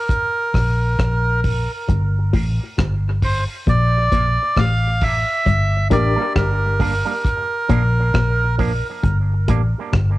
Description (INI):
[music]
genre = dub reggae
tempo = 67 BPM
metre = 4/4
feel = swing 57% on 16ths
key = unclear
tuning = A4 = 443 Hz
[part]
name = melodica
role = melody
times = 0.0-8.6 s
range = Bb4 to F5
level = -21 LUFS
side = right 2 dB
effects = cassette tape, dub echo
[part]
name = deep reggae drum kit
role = drums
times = 0.1-10.2 s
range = hi-hat, kick drum, rim click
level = -22 LUFS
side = equal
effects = cassette tape
[part]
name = vintage muted fingered electric bass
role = bass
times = 0.5-10.2 s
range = G1 to Bb1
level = -19 LUFS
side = equal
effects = none
[part]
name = electric guitar with an envelope filter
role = riff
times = 1.9-10.2 s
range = G2 to Bb2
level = -25 LUFS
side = left 4 dB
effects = phaser, dub echo
[part]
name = electric guitar with an envelope filter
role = accompaniment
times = 2.3-9.6 s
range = F3 to D4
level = -28 LUFS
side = right 7 dB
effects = wide subtle chorus, high-pass filter, dub echo
[part]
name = barky reed electric piano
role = stabs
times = 2.3-6.1 s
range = D4 to Bb4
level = -26 LUFS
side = left 5 dB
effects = overdrive, fast tremolo, high-pass filter, dub echo, plate reverb
[sound]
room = light reverb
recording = home recording on cassette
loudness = -16 LUFS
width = side -17 dB against mid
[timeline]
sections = 0.0-10.2 A section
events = break 0.0-1.9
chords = 0.1 N.C.; 1.9 Gm; 3.7 Bb; 5.5 Gm; 7.2 Bb; 9.0 N.C.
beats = 0.10 0.99 | 1.89 2.78 3.67 4.57 | 5.46 6.35 7.25 8.14 | 9.04 9.93